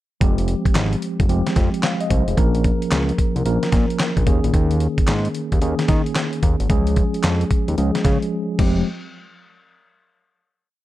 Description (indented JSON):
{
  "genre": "R&B, new jack swing",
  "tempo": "111 BPM",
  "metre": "4/4",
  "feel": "swing 64% on 16ths",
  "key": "F minor",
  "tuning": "A4 = 442 Hz",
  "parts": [
    { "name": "mellow tine electric piano", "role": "accompaniment", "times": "0.2-8.9 s", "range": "Eb3 to F5", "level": "-22 LUFS", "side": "equal", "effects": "medium stereo tremolo" },
    { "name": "fat analog bass", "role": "bass", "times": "0.2-8.8 s", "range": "F1 to Eb3", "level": "-20 LUFS", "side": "equal", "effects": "none" },
    { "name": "dusty soul sampler-style drum kit", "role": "drums", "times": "0.2-8.8 s", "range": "crash cymbal, handclaps, hi-hat, kick drum, snare drum", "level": "-20 LUFS", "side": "equal", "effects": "none" }
  ],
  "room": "digital ambience",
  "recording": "dark, warm production",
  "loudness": "-17 LUFS",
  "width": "side -15 dB against mid",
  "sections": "0.2-8.9 verse; 8.9-10.8 final hit",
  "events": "drums muted 8.3-8.9",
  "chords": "0.2 Fmadd9; 2.4 Bbm; 4.3 Eb7sus4; 6.7 Db; 8.6 Fmadd9; 8.9 N.C."
}